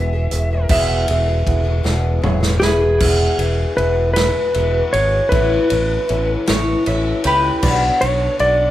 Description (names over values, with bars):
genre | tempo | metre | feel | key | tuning
folk rock and heartland rock | 52 BPM (dotted quarters) | 6/8 | straight | unclear | A4 = 440 Hz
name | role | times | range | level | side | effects
clean lap steel guitar | melody | 0.0-8.7 s | G#4 to E5 | -18 LUFS | equal | tape echo
barky reed electric piano | accompaniment | 0.0-8.7 s | D4 to F#5 | -27 LUFS | right 2 dB | harmonic tremolo
picked twelve-string acoustic guitar | accompaniment | 0.0-8.7 s | E2 to G#4 | -23 LUFS | left 3 dB | none
modern bright fingered electric bass | bass | 0.0-8.7 s | E1 to C#2 | -19 LUFS | equal | none
natural country drum kit | drums | 0.3-8.6 s | crash cymbal, hi-hat, kick drum, ride cymbal, snare drum, toms | -22 LUFS | equal | none
bowl-back mandolin | second line | 0.7-3.0, 6.5-7.8 s | G4 to E5 | -21 LUFS | equal | none
room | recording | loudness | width
moderate large studio reverb, RT60 1.4 s | band playing live in one room | -14 LUFS | side -13 dB against mid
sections
0.7-3.0 A section; 3.0-8.7 B section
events
drum fill 1.9-3.0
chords
0.0 E; 5.3 Aadd9; 7.6 Bm